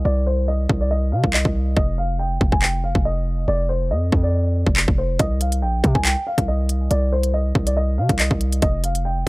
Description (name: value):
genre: hip hop, drill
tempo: 140 BPM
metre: 4/4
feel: half-time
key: C minor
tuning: A4 = 438 Hz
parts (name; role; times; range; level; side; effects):
- dark baby grand piano; melody; 0.0-9.3 s; C5 to Ab5; -25 LUFS; equal; low-pass filter, analog delay
- distorted 808-style bass; bass; 0.0-9.2 s; F1 to C3; -20 LUFS; equal; distortion
- drill drum kit; drums; 0.7-9.0 s; handclaps, hi-hat, kick drum; -20 LUFS; equal; none
room: little or no reverb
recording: dry, gritty hardware recording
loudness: -17 LUFS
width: side -22 dB against mid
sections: 0.0-9.3 A section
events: break 0.0-5.2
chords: 0.0 Cm; 1.8 F7(no3); 5.2 Cm; 8.6 F7sus2